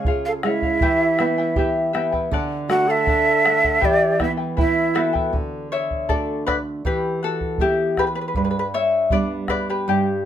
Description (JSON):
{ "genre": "andean folk, Andean ensemble", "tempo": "79 BPM", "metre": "2/4", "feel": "straight", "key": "E dorian", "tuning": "A4 = 440 Hz", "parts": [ { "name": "charango", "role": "accompaniment", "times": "0.0-10.3 s", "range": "E4 to G5", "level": "-22 LUFS", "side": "left 4 dB", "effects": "none" }, { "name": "nylon-string guitar", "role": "accompaniment", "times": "0.0-10.3 s", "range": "G2 to G4", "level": "-26 LUFS", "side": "right 4 dB", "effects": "none" }, { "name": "bombo", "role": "percussion", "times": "0.0-9.7 s", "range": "none", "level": "-25 LUFS", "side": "equal", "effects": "none" }, { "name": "breathy mellow large quena", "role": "melody", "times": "0.3-5.1 s", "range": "D5 to F#5", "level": "-20 LUFS", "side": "right 1 dB", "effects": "none" }, { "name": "large quena", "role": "second line", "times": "0.3-5.1 s", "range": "E4 to A4", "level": "-22 LUFS", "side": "right 5 dB", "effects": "none" } ], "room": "moderate studio reverb, RT60 0.6 s", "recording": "close, detailed microphones", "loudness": "-18 LUFS", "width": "side -10 dB against mid", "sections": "0.0-5.3 A section; 5.3-10.3 B section", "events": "charango solo 5.3-10.3", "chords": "0.0 C#; 0.8 Em; 2.3 D; 3.8 Em; 5.3 D; 6.9 Em; 8.4 G" }